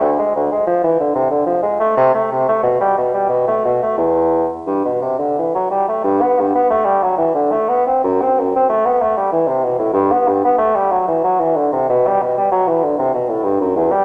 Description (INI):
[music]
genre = classical, baroque-style fantasia for unaccompanied bassoon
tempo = 86-98 BPM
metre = 3/4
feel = rubato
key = E minor, G major from 6.0 s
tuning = A4 = 440 Hz
[part]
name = mellow bassoon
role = solo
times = 0.0-14.0 s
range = D2 to C4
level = -16 LUFS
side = equal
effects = none
[sound]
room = wet recital hall reverb, RT60 1.6 s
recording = nothing above 10.6 kHz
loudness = -16 LUFS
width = mono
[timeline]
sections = 0.0-6.0 A section; 6.0-14.0 A section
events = none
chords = none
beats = | 0.03 0.66 1.30 | 1.97 2.63 3.29 | 3.97 4.67 5.35 | 6.04 6.69 7.34 | 8.02 8.68 9.32 | 9.95 10.58 11.22 | 11.88 12.51 13.14 | 13.76